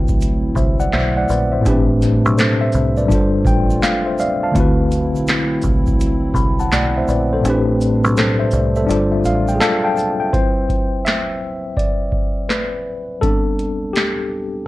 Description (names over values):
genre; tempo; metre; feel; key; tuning
lo-fi hip hop; 83 BPM; 4/4; swing 64% on 16ths; unclear; A4 = 441 Hz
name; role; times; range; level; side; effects
tine electric piano; accompaniment; 0.0-14.7 s; A2 to B5; -18 LUFS; left 1 dB; medium stereo tremolo, low-pass filter
dark analog pad; sustained chords; 0.0-10.3 s; F#3 to F4; -26 LUFS; right 1 dB; chorus, low-pass filter
deep dub fingered electric bass; bass; 0.0-9.6 s; G1 to D2; -20 LUFS; equal; none
booming analog drum machine; drums; 0.1-14.2 s; handclaps, hi-hat, kick drum, shaker, snare drum; -19 LUFS; equal; none
tube shaker; percussion; 0.1-10.2 s; none; -42 LUFS; right 7 dB; none
room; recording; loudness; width
moderate small room reverb, RT60 0.6 s; cassette tape; -15 LUFS; side -17 dB against mid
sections
0.0-10.3 A section; 10.3-14.7 B section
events
kick muted 7.4-10.3; tine electric piano solo 10.3-14.7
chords
0.0 D13; 1.7 Am11; 3.1 G9sus4; 4.5 D13; 7.4 Am11; 8.9 G9sus4; 10.3 D13; 13.2 Am11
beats
0.21 0.94 | 1.66 2.38 3.10 3.83 | 4.55 5.27 6.00 6.72 | 7.44 8.16 8.89 9.61 | 10.33 11.06 11.78 12.50 | 13.22 13.95 14.67